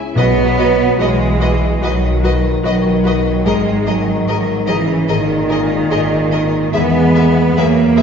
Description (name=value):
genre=cinematic, emotional film score for orchestra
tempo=73 BPM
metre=4/4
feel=rubato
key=B major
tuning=A4 = 441 Hz
part: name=concert harp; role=arpeggios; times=0.0-8.0 s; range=G#2 to E5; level=-21 LUFS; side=left 5 dB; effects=none
part: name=rich studio violin section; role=melody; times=0.2-8.0 s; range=D#5 to E5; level=-24 LUFS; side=left 3 dB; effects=none
part: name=rich studio violin section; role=second line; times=0.2-8.0 s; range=A#4 to B4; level=-26 LUFS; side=left 4 dB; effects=none
part: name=warm studio viola section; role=accompaniment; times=0.2-8.0 s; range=F#4 to G#4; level=-25 LUFS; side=right 1 dB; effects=none
part: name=dark French horn section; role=sustained chords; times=0.2-8.0 s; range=A#2 to G#3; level=-20 LUFS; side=left 2 dB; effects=none
part: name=rich studio cello section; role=bass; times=0.2-8.0 s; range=D#3 to B3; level=-16 LUFS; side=right 3 dB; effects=none
part: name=rich studio double bass section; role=bass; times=0.2-8.0 s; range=G#1 to E2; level=-20 LUFS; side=equal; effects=none
part: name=timpani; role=percussion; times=0.2-1.4 s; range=B2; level=-22 LUFS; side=equal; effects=none
room=wet scoring stage reverb, RT60 1.7 s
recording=heard from further back in the room, nothing above 7.7 kHz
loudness=-12 LUFS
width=side -6 dB against mid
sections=0.2-8.0 A section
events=none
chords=0.2 B; 3.5 G#sus2; 6.7 E